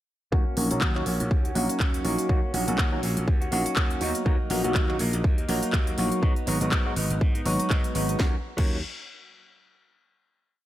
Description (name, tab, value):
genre	filtered disco house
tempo	122 BPM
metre	4/4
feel	swing 57% on 16ths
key	Eb minor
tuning	A4 = 440 Hz
part	bell-like tine electric piano	accompaniment	0.3-8.8 s	Gb3 to Gb4	-29 LUFS	equal	phaser, vintage 12-bit sampler grit, sidechain pumping, low-pass filter
part	direct-recorded clean electric guitar	riff	0.3-8.8 s	F#3 to Gb4	-34 LUFS	right 1 dB	wide subtle chorus, sidechain pumping, low-pass filter
part	slap bass	bass	0.3-8.8 s	Ab1 to Ab2	-29 LUFS	equal	sidechain pumping, low-pass filter
part	electronic kick drum	drums	0.3-8.7 s	none	-24 LUFS	equal	studio reverb
part	house drum kit	drums	0.6-8.7 s	crash cymbal, handclaps, hi-hat, snare drum	-31 LUFS	equal	sidechain pumping on hats, studio reverb, sidechain pumping on cymbals
room	light reverb, digital ambience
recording	none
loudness	-22 LUFS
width	side -14 dB against mid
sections	0.3-8.2 groove; 8.2-10.2 final chord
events	filter sweep 0.3-8.2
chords	0.3 Ebm7; 4.0 Bmaj7; 6.2 Abm7; 8.2 Ebm7